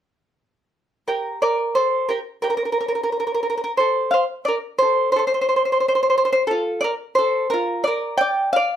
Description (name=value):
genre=andean folk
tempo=88 BPM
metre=4/4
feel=straight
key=unclear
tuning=A4 = 440 Hz
part: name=charango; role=accompaniment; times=1.1-8.8 s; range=F4 to G5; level=-18 LUFS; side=equal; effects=none
room=moderate studio reverb, RT60 0.6 s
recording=none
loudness=-18 LUFS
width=side -9 dB against mid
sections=0.0-1.4 A section; 1.4-8.8 B section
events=charango solo 1.4-8.8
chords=0.0 N.C.; 4.1 F; 6.8 Bb